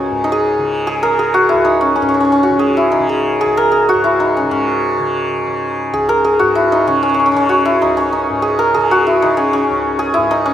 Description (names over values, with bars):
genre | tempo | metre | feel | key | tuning
indian classical, Hindustani | 191 BPM | 4/4 | straight | C# raga kafi | A4 = 440 Hz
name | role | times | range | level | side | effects
santur | melody | 0.0-10.5 s | C#4 to A#4 | -12 LUFS | equal | none
tanpura | drone | 0.0-10.5 s | C#2 to C#3 | -25 LUFS | right 1 dB | none
room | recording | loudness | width
light reverb | none | -12 LUFS | side -10 dB against mid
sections
0.0-4.5 A section; 4.5-10.5 B section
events
speeding up 0.0-10.5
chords
none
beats
0.07 0.39 | 0.71 1.03 1.35 1.66 | 1.98 2.30 2.62 2.93 | 3.25 3.57 3.88 4.20 | 4.51 4.83 5.14 5.46 | 5.77 6.08 6.40 6.71 | 7.02 7.34 7.65 7.96 | 8.27 8.58 8.89 9.20 | 9.51 9.82 10.13 10.44